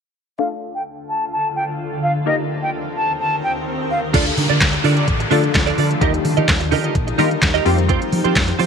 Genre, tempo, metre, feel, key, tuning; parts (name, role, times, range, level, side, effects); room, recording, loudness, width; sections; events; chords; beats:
dance-pop; 128 BPM; 4/4; straight; A4 = 439 Hz
silver concert flute; melody; 0.4-4.0 s; Eb5 to A5; -22 LUFS; equal; sidechain pumping, low-pass filter, tape echo
punchy chord stab; accompaniment; 0.4-8.4 s; G3 to Bb4; -24 LUFS; left 13 dB; chorus, sidechain pumping, low-pass filter
granular cloud pad; sustained chords; 1.0-8.7 s; D2 to Bb4; -25 LUFS; equal; built-in reverb, sidechain pumping, low-pass filter
swell and downlifter; sound effects; 3.0-7.9 s; -27 LUFS; equal
concert harp; arpeggios; 4.1-8.7 s; D3 to Eb5; -28 LUFS; left 12 dB; sidechain pumping, tape echo
direct-recorded clean electric guitar; riff; 4.1-8.7 s; C4 to Eb5; -21 LUFS; right 14 dB; analog chorus
vintage muted fingered electric bass; bass; 4.1-8.7 s; A1 to F3; -20 LUFS; equal; sidechain pumping
smooth R&B drum kit; drums; 4.1-8.7 s; crash cymbal, handclaps, hi-hat, kick drum, snare drum; -19 LUFS; equal
light reverb; 1960s-style stereo with parts hard left and right; -16 LUFS; side -6 dB against mid
0.4-4.1 A section; 4.1-8.7 B section
filter sweep 0.4-4.1; swell 3.0-4.1
0.4 Dm; 2.3 Eb; 3.9 Dm; 6.0 Eb; 7.7 Fsus2
| 0.39 0.86 1.33 1.80 | 2.27 2.73 3.20 3.67 | 4.14 4.61 5.08 5.55 | 6.02 6.49 6.95 7.42 | 7.89 8.36